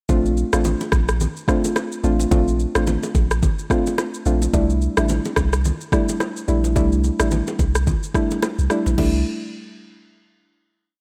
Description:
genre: afrobeats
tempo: 108 BPM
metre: 4/4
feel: swing 58% on 16ths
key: C mixolydian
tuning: A4 = 440 Hz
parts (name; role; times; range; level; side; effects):
- soft round pluck; accompaniment; 0.1-9.2 s; G3 to F4; -25 LUFS; equal; chorus
- punchy sub bass; bass; 0.1-9.2 s; A1 to C2; -23 LUFS; equal; none
- afro-pop drum kit; drums; 0.1-9.1 s; crash cymbal, kick drum, rim click, shaker; -25 LUFS; equal; none
- congas and bongos; percussion; 0.1-9.2 s; none; -31 LUFS; equal; none
room: little or no reverb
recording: none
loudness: -20 LUFS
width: mono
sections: 0.1-9.0 verse; 9.0-11.0 final chord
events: none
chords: 0.1 Bbmaj7; 4.5 C6

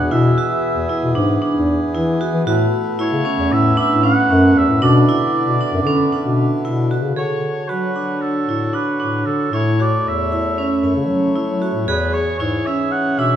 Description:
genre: contemporary instrumental, chamber music in an uneven meter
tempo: 230 BPM (eighths)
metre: 9/8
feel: straight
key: E mixolydian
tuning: A4 = 440 Hz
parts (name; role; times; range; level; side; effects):
- warm oboe; melody; 0.0-13.4 s; A4 to F#5; -21 LUFS; right 3 dB; none
- hand-pumped harmonium; sustained chords; 0.0-13.4 s; D3 to C#5; -24 LUFS; left 1 dB; none
- vibraphone with medium hard mallets; arpeggios; 0.0-13.4 s; C#4 to G#4; -19 LUFS; right 1 dB; none
- mellow bass clarinet; bass; 0.0-13.4 s; E2 to F#3; -20 LUFS; left 2 dB; none
room: wet recital hall reverb, RT60 1.6 s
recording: minimal, uncompressed stereo recording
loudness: -15 LUFS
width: side -10 dB against mid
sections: 0.0-7.2 A section; 7.2-13.4 B section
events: none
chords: 0.0 E; 2.5 Aadd9; 4.8 Bmadd9; 7.2 Dmaj7; 9.5 A; 11.9 E6

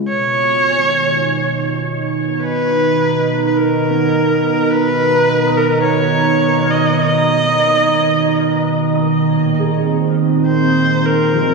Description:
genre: ambient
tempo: 52 BPM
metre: 4/4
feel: straight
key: B lydian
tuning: A4 = 440 Hz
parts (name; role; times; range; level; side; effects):
- warm analog pad; sustained chords; 0.0-11.5 s; A#2 to A#5; -16 LUFS; right 3 dB; chorus
- dark electric violin; melody; 0.1-11.5 s; A#4 to D#5; -16 LUFS; equal; analog delay
- felt-muted upright piano; arpeggios; 0.7-11.5 s; E#3 to E#6; -30 LUFS; right 2 dB; none
room: wet cathedral reverb, RT60 4.6 s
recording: dreamy mix soaked in reverb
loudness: -13 LUFS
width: side -3 dB against mid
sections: 0.1-11.5 A section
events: none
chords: 0.1 Bmaj7; 9.3 G#add9

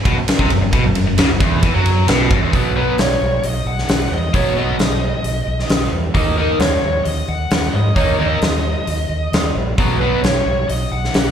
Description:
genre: hard rock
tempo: 132 BPM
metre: 4/4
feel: straight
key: unclear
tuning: A4 = 440 Hz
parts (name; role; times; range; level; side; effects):
- overdriven semi-hollow guitar; riff; 0.0-10.2 s; E2 to D#4; -21 LUFS; right 10 dB; slapback echo
- tight distorted guitar; riff; 0.1-10.2 s; E2 to D#4; -22 LUFS; left 13 dB; distortion, slapback echo
- overdriven fingered electric bass; bass; 0.1-11.3 s; E1 to G#2; -20 LUFS; equal; none
- huge arena drum kit; drums; 0.1-11.3 s; hi-hat, kick drum, ride cymbal, snare drum; -18 LUFS; equal; none
- bluesy overdriven lead guitar; melody; 2.8-11.3 s; A#4 to F#5; -22 LUFS; left 1 dB; distortion, slapback echo
room: light reverb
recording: live gig heard through the venue's PA, club reverb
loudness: -14 LUFS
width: side -8 dB against mid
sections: 0.0-2.5 A section; 2.5-11.3 B section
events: none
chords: 0.0 F#5; 2.5 B; 6.2 D#5; 9.8 B5

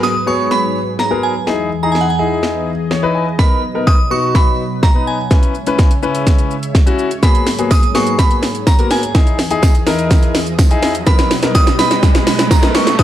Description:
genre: dance-pop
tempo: 125 BPM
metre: 4/4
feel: straight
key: B major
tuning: A4 = 443 Hz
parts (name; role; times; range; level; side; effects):
- glassy synth bell; melody; 0.0-13.0 s; F#5 to D#6; -19 LUFS; right 3 dB; chorus, digital delay
- clear concert grand piano; accompaniment; 0.0-13.0 s; A#3 to G#5; -19 LUFS; left 3 dB; sidechain pumping
- sweeping resonant pad; sustained chords; 0.0-13.0 s; E2 to E5; -22 LUFS; equal; chorus, sidechain pumping
- house drum kit; drums; 0.0-13.0 s; hi-hat, kick drum, shaker, snare drum; -12 LUFS; equal; none
- riser; sound effects; 9.8-13.0 s; none; -22 LUFS; right 3 dB; none
- tambourine; percussion; 7.5-12.9 s; none; -32 LUFS; right 6 dB; none
room: light reverb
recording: dark, warm production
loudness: -11 LUFS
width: side -12 dB against mid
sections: 0.0-13.0 A section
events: build-up 0.0-13.0; drum fill 0.0-13.0; grand piano fill 2.7-3.4; riser 9.8-13.0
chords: 0.0 G#m9; 1.5 Emaj7; 3.4 Bmaj7; 5.3 C#m7; 7.2 G#m9; 9.2 Emaj7; 11.1 Bmaj7

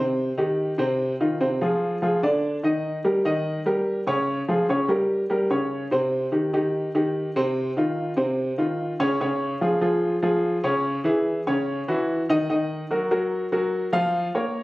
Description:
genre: jazz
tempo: 146 BPM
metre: 4/4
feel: straight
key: Eb major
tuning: A4 = 440 Hz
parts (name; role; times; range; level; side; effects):
- warm upright piano; solo; 0.0-14.6 s; C3 to F5; -21 LUFS; equal; none
room: moderate studio ambience, RT60 0.5 s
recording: recorded on a phone in the room, club reverb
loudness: -21 LUFS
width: side -19 dB against mid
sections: 0.0-5.9 A section; 5.9-14.6 B section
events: none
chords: 0.0 Cm; 1.0 Fm7; 1.8 Ddim; 2.6 Eb; 4.3 Bbm7; 5.1 Gdim; 5.9 Cm; 7.6 F5; 9.2 Db; 10.8 Dbm; 11.7 Gb5; 12.5 Ebmadd9; 14.1 Gbmaj7/F (rootless)

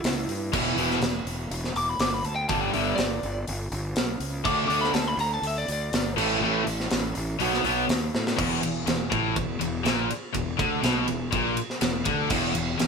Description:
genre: hard rock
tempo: 122 BPM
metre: 4/4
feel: straight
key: E dorian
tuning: A4 = 440 Hz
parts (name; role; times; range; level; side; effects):
- lightly driven lead guitar; melody; 0.0-6.2 s; E4 to D6; -28 LUFS; left 1 dB; slapback echo
- fuzz fingered electric bass; bass; 0.0-12.9 s; E1 to A2; -31 LUFS; equal; overdrive
- tight metal drum kit; drums; 0.0-12.9 s; crash cymbal, hi-hat, kick drum, ride cymbal, snare drum; -28 LUFS; equal; none
- crunchy overdriven guitar; riff; 0.5-12.9 s; E2 to D4; -30 LUFS; right 10 dB; none
- scooped high-gain guitar; riff; 0.5-12.9 s; E2 to D4; -27 LUFS; left 9 dB; distortion
room: moderate studio ambience, RT60 0.5 s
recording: band playing live in one room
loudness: -23 LUFS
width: side -5 dB against mid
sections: 0.0-8.4 A section; 8.4-12.9 B section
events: lead electric guitar solo 0.0-8.4; drum fill 8.1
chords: 0.0 A (rootless); 0.5 E5; 2.5 G5; 4.5 D5; 6.2 A5; 7.4 B7; 8.4 E5

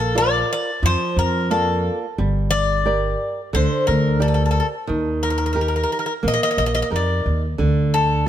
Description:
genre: greek folk, Greek bouzouki band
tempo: 89 BPM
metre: 4/4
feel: straight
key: unclear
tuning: A4 = 442 Hz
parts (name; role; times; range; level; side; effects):
- Greek bouzouki; melody; 0.0-8.3 s; A4 to Eb5; -22 LUFS; left 3 dB; none
- flamenco guitar; accompaniment; 0.0-8.3 s; D3 to D5; -24 LUFS; right 3 dB; none
- upright bass; bass; 0.0-8.3 s; G1 to F2; -20 LUFS; equal; none
room: moderate plate reverb, RT60 2.2 s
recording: none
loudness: -18 LUFS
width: side -10 dB against mid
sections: 0.0-8.3 A section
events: none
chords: 0.0 Bb; 2.2 Gm; 4.9 Eb; 7.6 D5

